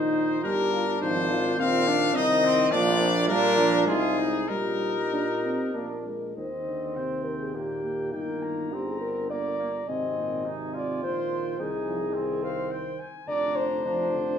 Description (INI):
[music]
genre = classical, brass quintet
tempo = 104 BPM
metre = 3/4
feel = rubato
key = Eb major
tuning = A4 = 439 Hz
[part]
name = clear trumpet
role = melody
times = 0.0-14.1 s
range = Ab4 to Bb5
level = -30 LUFS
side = left 7 dB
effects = none
[part]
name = mellow trumpet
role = second line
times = 0.0-14.4 s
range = Bb3 to F4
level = -32 LUFS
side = right 5 dB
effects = none
[part]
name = mellow euphonium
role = accompaniment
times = 0.0-14.4 s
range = Bb2 to D4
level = -34 LUFS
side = right 4 dB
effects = none
[part]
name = warm French horn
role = accompaniment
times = 0.0-14.4 s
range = Bb3 to Eb5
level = -29 LUFS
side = left 2 dB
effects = none
[part]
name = warm bass trombone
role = bass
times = 0.0-14.4 s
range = F1 to Bb2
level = -31 LUFS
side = right 3 dB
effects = none
[sound]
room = wet recital hall reverb, RT60 1.2 s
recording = small room ambience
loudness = -24 LUFS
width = side -8 dB against mid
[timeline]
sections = 0.0-6.4 A section; 6.4-14.4 B section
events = none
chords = 0.0 Cm; 1.0 Fm7/Ab; 2.7 Bb; 3.9 Ab/C; 4.5 Eb/Bb; 5.7 Bb; 6.4 Eb; 8.1 Eb/G; 9.9 Ab; 11.6 Ab/C; 13.3 Dm7/F